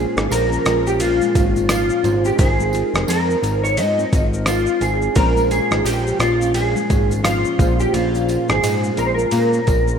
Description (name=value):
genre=indie pop, bedroom pop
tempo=86 BPM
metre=4/4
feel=swing 60% on 16ths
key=Bb minor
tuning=A4 = 440 Hz
part: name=electric guitar through a small old amp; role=melody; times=0.0-10.0 s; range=F4 to Eb5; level=-19 LUFS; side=right 1 dB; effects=analog chorus, digital delay
part: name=nylon-string guitar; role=accompaniment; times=0.0-10.0 s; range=Bb2 to C5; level=-25 LUFS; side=left 5 dB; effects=analog chorus, warbly pitch drift
part: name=warbly lo-fi synth keys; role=accompaniment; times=0.0-10.0 s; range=Ab3 to C5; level=-28 LUFS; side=right 5 dB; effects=chorus
part: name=fat analog bass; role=bass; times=0.0-10.0 s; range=F1 to Bb2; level=-22 LUFS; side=equal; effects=none
part: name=dusty soul sampler-style drum kit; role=drums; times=0.2-10.0 s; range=kick drum, ride cymbal, rim click, shaker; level=-22 LUFS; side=equal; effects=none
part: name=tambourine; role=percussion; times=0.3-9.9 s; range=none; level=-37 LUFS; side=right 6 dB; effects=none
room=light reverb, digital ambience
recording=rough home demo mix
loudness=-15 LUFS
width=side -7 dB against mid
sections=0.0-10.0 A section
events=none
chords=0.0 Bbm7; 2.4 Ab69; 5.2 Bbm9